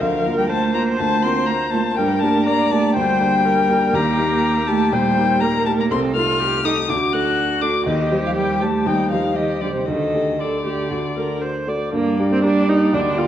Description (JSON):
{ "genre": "quick classical-period movement for piano quartet", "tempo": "122 BPM", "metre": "4/4", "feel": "straight", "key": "G minor from 3.9 s", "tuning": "A4 = 440 Hz", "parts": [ { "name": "dark violin", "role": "melody", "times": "0.0-13.3 s", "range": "C5 to F#6", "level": "-22 LUFS", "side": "left 6 dB", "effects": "none" }, { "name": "warm cello", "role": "second line", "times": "0.0-13.3 s", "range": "C3 to F#4", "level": "-23 LUFS", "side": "right 4 dB", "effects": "none" }, { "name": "rich viola", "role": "accompaniment", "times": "0.0-13.3 s", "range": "Bb3 to D5", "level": "-23 LUFS", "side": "right 2 dB", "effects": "none" }, { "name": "warm baby grand piano", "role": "accompaniment", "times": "0.0-13.3 s", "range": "C2 to C5", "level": "-22 LUFS", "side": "left 1 dB", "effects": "none" } ], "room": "wet recital hall reverb, RT60 1.5 s", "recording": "worn, warbling old tape, cassette tape, warbly pitch drift", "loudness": "-16 LUFS", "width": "side -10 dB against mid", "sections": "0.0-11.9 A section; 11.9-13.3 B section", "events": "none", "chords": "0.0 Bb/D; 2.0 Gm; 3.9 Eb; 5.9 Adim/C; 6.9 D; 7.9 Cm/Eb; 9.9 Dsus4; 10.9 D; 11.9 Gm" }